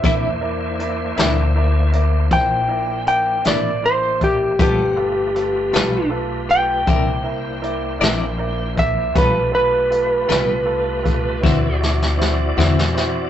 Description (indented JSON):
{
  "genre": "slow blues",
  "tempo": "53 BPM (dotted quarters)",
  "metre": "12/8",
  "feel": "straight",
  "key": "unclear",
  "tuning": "A4 = 440 Hz",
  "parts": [
    { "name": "electric slide guitar", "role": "melody", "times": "0.0-11.8 s", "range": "G4 to G5", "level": "-19 LUFS", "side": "equal", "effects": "none" },
    { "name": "clean electric guitar", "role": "accompaniment", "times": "0.0-12.8 s", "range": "C3 to D5", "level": "-22 LUFS", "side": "left 3 dB", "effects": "tremolo" },
    { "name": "clear concert grand piano", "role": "accompaniment", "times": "0.0-13.2 s", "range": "E4 to E5", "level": "-26 LUFS", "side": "right 2 dB", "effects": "none" },
    { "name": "upright bass", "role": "bass", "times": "0.0-13.3 s", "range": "G1 to E2", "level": "-23 LUFS", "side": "left 1 dB", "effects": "none" },
    { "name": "jazz brush drum kit", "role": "drums", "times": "0.0-13.1 s", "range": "hi-hat, kick drum, snare drum", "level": "-21 LUFS", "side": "left 1 dB", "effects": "none" },
    { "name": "bright tonewheel organ", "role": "sustained chords", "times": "0.1-13.3 s", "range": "Ab3 to F#5", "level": "-28 LUFS", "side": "left 1 dB", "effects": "chorus vibrato, fast rotary speaker" }
  ],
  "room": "moderate studio reverb, RT60 0.5 s",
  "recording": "rough rehearsal-room recording, tube saturation, nothing above 7.9 kHz",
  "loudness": "-16 LUFS",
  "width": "side -10 dB against mid",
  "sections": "0.0-13.3 A section",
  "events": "drum fill 11.4-13.3",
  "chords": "0.0 C9; 4.6 G9; 6.9 C9; 9.2 G9; 11.4 D9"
}